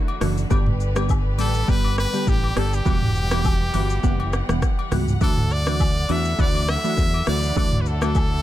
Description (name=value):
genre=afrobeats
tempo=102 BPM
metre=4/4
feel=swing 55% on 16ths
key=D major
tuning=A4 = 440 Hz
part: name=brilliant trumpet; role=melody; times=0.0-8.4 s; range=F#4 to E5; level=-27 LUFS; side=equal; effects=ping-pong delay
part: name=glassy wavetable pluck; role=accompaniment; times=0.0-8.2 s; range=D3 to F#5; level=-27 LUFS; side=right 1 dB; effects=chorus
part: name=clear symphonic string section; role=sustained chords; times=0.0-8.4 s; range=D3 to F#5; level=-33 LUFS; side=equal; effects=none
part: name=agogo bells and woodblock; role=percussion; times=0.1-8.3 s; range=none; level=-34 LUFS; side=left 9 dB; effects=none
part: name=fingered electric bass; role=bass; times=0.2-8.4 s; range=E1 to E2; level=-23 LUFS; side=equal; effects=none
part: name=afro-pop drum kit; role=drums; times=0.2-8.3 s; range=hi-hat, kick drum, rim click, shaker, toms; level=-23 LUFS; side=equal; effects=overdrive
room=little or no reverb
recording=none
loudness=-18 LUFS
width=side -13 dB against mid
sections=0.0-8.4 A section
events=none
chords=0.0 Dadd9; 0.5 G; 2.9 Emadd9; 5.2 Dadd9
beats=| 0.51 1.09 1.68 2.27 | 2.86 3.45 4.03 4.62 | 5.21 5.80 6.39 6.97 | 7.56 8.15